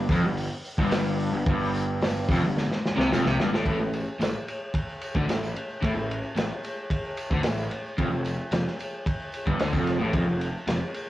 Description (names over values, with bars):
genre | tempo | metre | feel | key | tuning
garage rock duo or trio | 111 BPM | 4/4 | straight | unclear | A4 = 440 Hz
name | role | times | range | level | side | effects
crunchy overdriven guitar | riff | 0.0-10.8 s | F2 to D3 | -27 LUFS | equal | none
fuzz picked electric bass | bass | 0.0-10.8 s | F1 to D2 | -31 LUFS | equal | overdrive, tube saturation
crunchy breakbeat drum kit | drums | 0.1-11.1 s | hi-hat, kick drum, ride cymbal, snare drum | -28 LUFS | equal | vintage 12-bit sampler grit
tambourine | percussion | 0.1-11.1 s | none | -51 LUFS | right 1 dB | none
room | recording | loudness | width
moderate stone room reverb, RT60 1.1 s | rough rehearsal-room recording, cassette tape | -24 LUFS | side -15 dB against mid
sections
0.0-3.7 A section; 3.7-11.1 B section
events
drum fill 2.6-3.7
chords
0.0 Fsus2; 3.7 N.C.